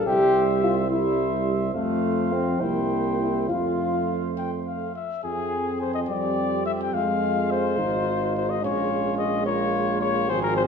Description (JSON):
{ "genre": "classical, brass quintet", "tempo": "71 BPM (dotted quarters)", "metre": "6/8", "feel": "rubato", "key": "F major, F minor from 5.2 s", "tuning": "A4 = 440 Hz", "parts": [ { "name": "mellow trumpet", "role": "melody", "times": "0.0-10.6 s", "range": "Ab4 to G5", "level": "-28 LUFS", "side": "left 8 dB", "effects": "none" }, { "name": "mellow trombone", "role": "accompaniment", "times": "0.0-10.7 s", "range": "F3 to Bb3", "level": "-30 LUFS", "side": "right 4 dB", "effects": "none" }, { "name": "warm French horn", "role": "accompaniment", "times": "0.0-10.7 s", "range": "Ab3 to G4", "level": "-27 LUFS", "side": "left 3 dB", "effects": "none" }, { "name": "clear tuba", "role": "bass", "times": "0.0-10.7 s", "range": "Ab1 to F2", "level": "-28 LUFS", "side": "right 4 dB", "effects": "none" }, { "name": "warm flugelhorn", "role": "second line", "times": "0.1-10.7 s", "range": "F4 to C5", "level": "-32 LUFS", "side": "right 7 dB", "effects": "none" } ], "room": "wet recital hall reverb, RT60 1.4 s", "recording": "recorded in a church or concert hall", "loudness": "-22 LUFS", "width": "side -6 dB against mid", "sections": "0.0-5.2 A section; 5.2-10.7 B section", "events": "none", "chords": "0.1 C; 1.7 F; 2.6 C7; 3.5 F; 5.2 Fm; 6.1 Dm11/F; 6.9 Fm; 8.6 Bbm" }